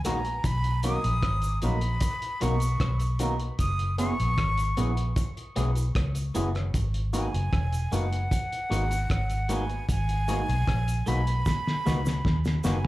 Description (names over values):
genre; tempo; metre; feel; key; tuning
lovers rock reggae; 76 BPM; 4/4; straight; G# minor; A4 = 440 Hz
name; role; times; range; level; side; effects
barky tine electric piano; accompaniment; 0.0-12.8 s; A#3 to G#4; -34 LUFS; left 3 dB; slapback echo
electric guitar through a small old amp; stabs; 0.0-12.8 s; F#3 to B4; -33 LUFS; right 3 dB; lush chorus, slapback echo
vintage muted fingered electric bass; bass; 0.0-12.9 s; E1 to D#2; -27 LUFS; equal; none
cloth-damped thuddy drum kit; drums; 0.0-12.9 s; hi-hat, kick drum, rim click, snare drum, toms; -30 LUFS; equal; none
breathy concert flute; melody; 0.1-12.9 s; F#5 to D#6; -32 LUFS; equal; tape echo, slapback echo
cabasa; percussion; 0.1-12.8 s; none; -45 LUFS; right 4 dB; none
room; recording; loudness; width
light reverb; live gig heard through the venue's PA, club reverb; -24 LUFS; side -17 dB against mid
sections
0.0-12.9 A section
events
drum fill 11.5-12.9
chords
0.4 Bmaj7; 3.6 F#7sus4; 6.7 G#m7